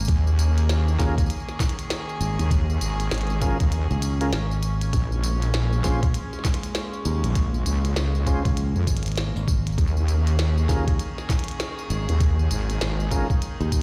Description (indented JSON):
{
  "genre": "glitch hop",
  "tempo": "99 BPM",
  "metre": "4/4",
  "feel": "swing 62% on 16ths",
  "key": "unclear",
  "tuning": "A4 = 441 Hz",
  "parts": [
    { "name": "rich chamber string section", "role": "sustained chords", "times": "0.0-13.8 s", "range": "Eb3 to Ab4", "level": "-36 LUFS", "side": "equal", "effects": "sidechain pumping" },
    { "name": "modern bright fingered electric bass", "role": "bass", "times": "0.0-13.8 s", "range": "Ab1 to Eb2", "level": "-27 LUFS", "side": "equal", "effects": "none" },
    { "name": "glitchy drum kit", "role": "drums", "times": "0.0-13.8 s", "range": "hi-hat, snare drum, tambourine", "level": "-35 LUFS", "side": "equal", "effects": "none" },
    { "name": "wobble bass", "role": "bass", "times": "0.1-13.3 s", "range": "Ab1 to F2", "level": "-24 LUFS", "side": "equal", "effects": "chorus" },
    { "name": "electronic kick drum", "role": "drums", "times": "0.1-13.8 s", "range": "none", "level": "-24 LUFS", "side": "equal", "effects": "overdrive" },
    { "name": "tonewheel organ", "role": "stabs", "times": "1.0-13.3 s", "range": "Db4 to C5", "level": "-34 LUFS", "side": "equal", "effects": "chorus vibrato, vintage 12-bit sampler grit, sidechain pumping, dub echo" }
  ],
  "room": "digital ambience",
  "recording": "played on a big sound system in a bare room, stone room reverb",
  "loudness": "-24 LUFS",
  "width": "mono",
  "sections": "0.0-13.8 A section",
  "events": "kick drops out 3.7-4.9",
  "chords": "0.1 Eb7sus4; 4.9 Bbm7; 9.8 Eb7sus4",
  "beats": "| 0.08 0.69 1.30 1.90 | 2.51 3.12 3.72 4.33 | 4.93 5.54 6.14 6.75 | 7.36 7.96 8.57 9.18 | 9.78 10.39 10.99 11.60 | 12.21 12.81 13.42"
}